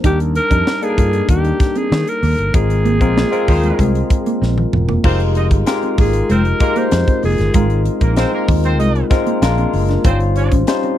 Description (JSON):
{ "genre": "polished 1980s jazz-funk pop", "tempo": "96 BPM", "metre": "4/4", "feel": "straight", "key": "F dorian", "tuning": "A4 = 439 Hz", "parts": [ { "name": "barky tine electric piano", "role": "accompaniment", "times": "0.0-11.0 s", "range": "G3 to C5", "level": "-19 LUFS", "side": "left 4 dB", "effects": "wide subtle chorus" }, { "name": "mellow electric guitar", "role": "riff", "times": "0.0-10.9 s", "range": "Ab3 to F4", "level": "-22 LUFS", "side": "right 2 dB", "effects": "analog chorus" }, { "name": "fretless electric bass", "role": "bass", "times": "0.0-10.6 s", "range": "E1 to Eb3", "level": "-16 LUFS", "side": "equal", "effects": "none" }, { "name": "tight funk drum kit", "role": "drums", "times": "0.0-11.0 s", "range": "crash cymbal, hi-hat, kick drum, snare drum, toms", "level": "-17 LUFS", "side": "equal", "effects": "none" }, { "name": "growling alto saxophone", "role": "melody", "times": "0.1-7.8 s", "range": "G4 to C5", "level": "-20 LUFS", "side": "right 1 dB", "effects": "none" }, { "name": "mellow horn section", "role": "second line", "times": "3.5-10.5 s", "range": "F3 to Eb5", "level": "-24 LUFS", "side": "right 4 dB", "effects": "none" } ], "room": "little or no reverb", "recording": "dry, close 1970s-style studio recording", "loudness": "-13 LUFS", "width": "side -12 dB against mid", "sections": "0.0-5.0 A section; 5.0-11.0 B section", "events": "band accent 2.5-5.0; drum fill 4.4-5.0", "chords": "0.0 Ebmaj7; 2.5 Ab69; 5.0 Fm11; 7.5 Ab69; 9.4 Bb7; 10.0 Eb13/G" }